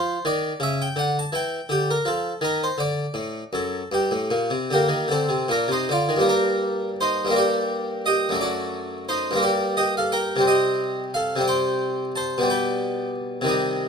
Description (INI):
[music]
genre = classical, baroque-style suite movement for harpsichord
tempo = 50-60 BPM (dotted quarters)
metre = 6/8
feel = rubato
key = G minor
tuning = A4 = 440 Hz
[part]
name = harpsichord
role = solo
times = 0.0-13.9 s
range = F#2 to A5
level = -21 LUFS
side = equal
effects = none
[sound]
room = light reverb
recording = close, detailed microphones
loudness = -21 LUFS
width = side -6 dB against mid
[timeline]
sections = 0.0-6.3 A section; 6.3-13.9 B section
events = none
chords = 0.0 N.C.; 0.6 C#dim; 1.7 Ebmaj9#11/D; 2.8 D; 3.9 Gm; 8.4 D/F#; 9.4 Gm; 10.4 Cm; 12.5 G/B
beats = 0.62 | 1.69 2.78 | 3.92 5.08 | 6.26 7.33 | 8.37 9.40 | 10.43 11.45 | 12.48 13.51